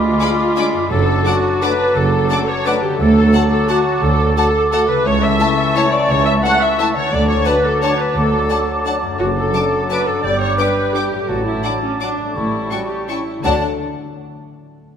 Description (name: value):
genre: classical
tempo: 159-189 BPM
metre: 3/4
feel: rubato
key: D major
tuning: A4 = 440 Hz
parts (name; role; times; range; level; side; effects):
- mellow clarinet; second line; 0.0-13.6 s; C#4 to F#5; -25 LUFS; left 1 dB; none
- mellow flute section; second line; 0.0-13.6 s; A5 to D6; -24 LUFS; equal; none
- warm oboe; second line; 0.0-13.6 s; G5 to B5; -27 LUFS; left 2 dB; none
- clear bassoon; accompaniment; 0.0-13.6 s; E3 to Ab3; -26 LUFS; equal; none
- rich symphonic viola section; accompaniment; 0.0-13.6 s; C#4 to F#5; -20 LUFS; equal; none
- concert harp; arpeggios; 0.0-13.6 s; F#2 to F#5; -27 LUFS; left 9 dB; none
- dark symphonic cello section; bass; 0.0-13.6 s; C#2 to D3; -21 LUFS; right 2 dB; none
- rich chamber double bass section; bass; 0.0-13.6 s; F#1 to D2; -22 LUFS; right 2 dB; none
- rich chamber violin section; melody; 0.2-13.6 s; A5 to D6; -27 LUFS; left 4 dB; none
- warm chamber violin section; second line; 0.2-13.6 s; D5 to D6; -28 LUFS; left 4 dB; none
- mellow French horn section; sustained chords; 0.2-13.6 s; F#3 to F#4; -27 LUFS; left 4 dB; none
- timpani; percussion; 3.0-3.5, 7.1-7.6, 11.3-13.6 s; A2 to D3; -32 LUFS; equal; none
room: moderate concert hall reverb, RT60 2.3 s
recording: none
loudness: -14 LUFS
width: side -8 dB against mid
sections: 0.0-13.4 A section; 13.4-14.5 B section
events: none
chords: 0.0 Ddim7; 0.9 D/F#; 3.0 D; 5.1 A/C#; 7.1 D; 9.2 D/F#; 10.2 G; 11.3 D/A; 13.4 D